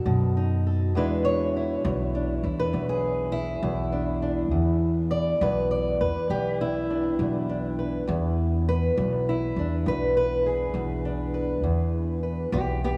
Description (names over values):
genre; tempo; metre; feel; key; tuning
acoustic country blues, solo or duo; 67 BPM (dotted quarters); 12/8; straight; E mixolydian; A4 = 440 Hz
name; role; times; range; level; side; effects
fingerpicked old ladder-braced acoustic guitar; melody; 0.0-13.0 s; E2 to D5; -28 LUFS; equal; none
upright bass; bass; 0.1-13.0 s; B1 to F#2; -30 LUFS; equal; none
room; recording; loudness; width
wet huge ambient reverb, RT60 8.4 s; in a vast, echoing space, small room ambience; -26 LUFS; mono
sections
0.0-8.1 A section; 8.1-13.0 B section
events
steel-string acoustic guitar solo 8.1-13.0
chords
0.0 B7; 1.0 E7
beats
0.06 | 0.95 1.84 2.74 3.63 | 4.52 5.41 6.30 7.19 | 8.08 8.97 9.86 10.75 | 11.64 12.53